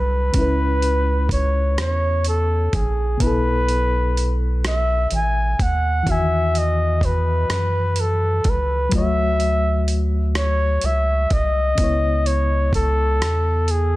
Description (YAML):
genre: slow six-eight R&B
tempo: 42 BPM (dotted quarters)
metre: 6/8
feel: straight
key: unclear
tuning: A4 = 437 Hz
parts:
  - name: warm flugelhorn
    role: melody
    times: 0.0-14.0 s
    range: G#4 to G#5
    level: -22 LUFS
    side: equal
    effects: none
  - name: reed electric piano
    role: accompaniment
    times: 0.0-14.0 s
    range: B2 to G#5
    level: -27 LUFS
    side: left 3 dB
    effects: fast tremolo
  - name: rubbery square bass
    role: bass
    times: 0.0-14.0 s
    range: A1 to F#2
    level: -20 LUFS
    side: equal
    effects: none
  - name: dusty soul sampler-style drum kit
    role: drums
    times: 0.3-13.9 s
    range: hi-hat, kick drum, rim click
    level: -24 LUFS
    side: equal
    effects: none
room: light reverb, digital ambience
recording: none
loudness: -17 LUFS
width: side -18 dB against mid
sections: 0.0-14.0 A section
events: none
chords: 0.3 C#m7; 3.2 B7sus4; 6.1 Emaj9; 8.9 Dmaj7; 11.8 C#m7